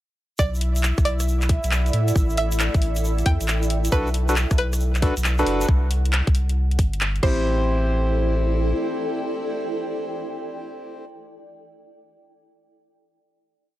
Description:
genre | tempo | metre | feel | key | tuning
UK garage, two-step garage | 136 BPM | 4/4 | swing 67% on 16ths | A dorian | A4 = 440 Hz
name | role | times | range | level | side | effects
string-like resonator pluck | melody | 0.4-11.1 s | B4 to G5 | -28 LUFS | right 2 dB | chorus, vintage 12-bit sampler grit, analog delay
warm analog pad | sustained chords | 0.4-5.7 s | E4 to E5 | -32 LUFS | equal | chorus, sidechain pumping
saturated sub bass | bass | 0.4-8.7 s | F#1 to A2 | -22 LUFS | equal | sidechain pumping
electronic kick drum | drums | 0.4-7.3 s | none | -20 LUFS | equal | none
tube shaker | percussion | 0.4-5.7 s | none | -36 LUFS | right 2 dB | none
granular cloud pad | texture | 1.3-11.5 s | E4 to G5 | -31 LUFS | equal | built-in reverb, sidechain pumping
garage drum kit | drums | 0.6-7.3 s | crash cymbal, handclaps, hi-hat, rim click | -27 LUFS | left 1 dB | none
percussive organ stab | stabs | 3.9-11.1 s | C4 to C5 | -26 LUFS | equal | chorus, analog delay
room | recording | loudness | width
little or no reverb | dry, gritty hardware recording | -19 LUFS | side -15 dB against mid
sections
0.4-7.5 groove; 7.5-11.0 final chord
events
none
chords
0.4 Bm7; 1.9 A5; 3.9 D69; 5.7 C5; 7.2 Am7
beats
| 0.39 0.83 1.27 1.72 | 2.16 2.60 3.04 3.48 | 3.92 4.36 4.80 5.25 | 5.69 6.13 6.57 7.01 | 7.45 7.89 8.33 8.77 | 9.21 9.66 10.10 10.54

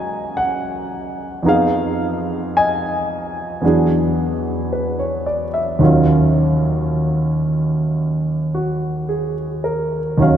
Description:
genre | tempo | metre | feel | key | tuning
jazz ballad | 55 BPM | 4/4 | swing 68% on 8ths | Eb minor | A4 = 440 Hz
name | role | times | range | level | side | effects
warm concert grand piano | solo | 0.0-10.4 s | Eb2 to Bb5 | -16 LUFS | right 1 dB | none
room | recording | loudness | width
wet cathedral reverb, RT60 4.7 s | recorded in a church or concert hall | -16 LUFS | side -9 dB against mid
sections
0.0-10.4 A section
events
none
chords
0.0 Gb69; 1.4 Fm7b5; 3.6 E9; 5.8 Ebm9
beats
0.34 | 1.44 2.54 3.62 4.71 | 5.80 6.89 7.99 9.08 | 10.18

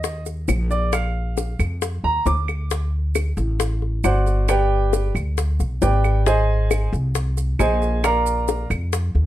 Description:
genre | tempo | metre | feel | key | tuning
latin, Cuban son and guajira | 135 BPM | 4/4 | straight | unclear | A4 = 440 Hz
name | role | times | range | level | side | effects
clear baby grand piano | arpeggios | 0.0-8.7 s | F#4 to D6 | -22 LUFS | right 2 dB | none
upright bass | bass | 0.0-9.3 s | G1 to F2 | -21 LUFS | equal | none
bongos | percussion | 0.0-9.3 s | none | -26 LUFS | left 8 dB | none
maracas | percussion | 0.0-9.2 s | none | -35 LUFS | right 8 dB | none
claves | percussion | 0.5-8.9 s | none | -30 LUFS | right 6 dB | none
room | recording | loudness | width
light reverb | none | -18 LUFS | side -13 dB against mid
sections
0.0-9.3 A section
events
grand piano solo 0.0-9.3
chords
0.0 N.C.; 0.9 Bb; 2.7 D7; 4.5 G; 6.3 Ab; 8.0 Bb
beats
0.04 0.48 | 0.93 1.37 1.82 2.26 | 2.71 3.15 3.60 4.04 | 4.49 4.93 5.37 5.82 | 6.26 6.71 7.15 7.59 | 8.04 8.48 8.93

